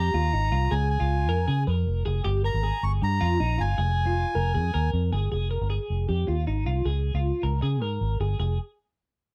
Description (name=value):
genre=jangly indie pop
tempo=156 BPM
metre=4/4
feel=straight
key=F minor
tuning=A4 = 440 Hz
part: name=melodica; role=melody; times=0.0-4.9 s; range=Ab5 to Db6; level=-31 LUFS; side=equal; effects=slapback echo
part: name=twelve-string electric guitar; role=arpeggios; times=0.0-8.6 s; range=Eb4 to Bb4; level=-34 LUFS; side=equal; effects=harmonic tremolo, slapback echo
part: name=vintage muted fingered electric bass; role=bass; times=0.0-8.6 s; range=F1 to Db3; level=-27 LUFS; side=equal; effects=none
room=little or no reverb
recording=dry, close 1970s-style studio recording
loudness=-26 LUFS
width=mono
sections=0.0-5.3 A section; 5.3-8.4 B section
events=none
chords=0.0 Fm7; 0.7 Db; 2.3 Gm7; 3.8 Fm; 5.3 Fm7; 6.9 Db; 8.4 Fm